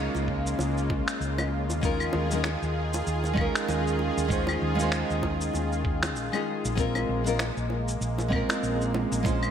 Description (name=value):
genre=sunset chillout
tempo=97 BPM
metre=4/4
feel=swing 57% on 16ths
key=Bb minor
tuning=A4 = 441 Hz
part: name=nylon-string guitar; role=accompaniment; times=0.0-9.5 s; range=Ab3 to Db5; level=-30 LUFS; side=moving between left 5 dB and right 5 dB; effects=auto-pan, digital delay
part: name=lush unison pad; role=sustained chords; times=0.0-9.5 s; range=Db3 to Ab4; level=-31 LUFS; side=equal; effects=chorus
part: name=hollow-body short-scale fingered electric bass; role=bass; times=0.0-9.5 s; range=Bb1 to Eb2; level=-30 LUFS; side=equal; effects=tube saturation
part: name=bongos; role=percussion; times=0.1-9.4 s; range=none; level=-38 LUFS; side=right 2 dB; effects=none
part: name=electronic shaker, finger snaps and claves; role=drums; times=0.2-9.5 s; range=none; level=-33 LUFS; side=left 1 dB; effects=gated reverb
part: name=electronic kick drum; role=drums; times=0.3-9.4 s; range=none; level=-30 LUFS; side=equal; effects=none
room=moderate lush hall reverb, RT60 2.5 s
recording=bright 1980s-style digital production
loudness=-25 LUFS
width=side -8 dB against mid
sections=0.0-9.5 A section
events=none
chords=0.0 Db6; 1.8 Bbm7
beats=0.59 1.21 | 1.83 2.45 3.06 3.68 | 4.30 4.92 5.54 6.16 | 6.78 7.39 8.01 8.63 | 9.25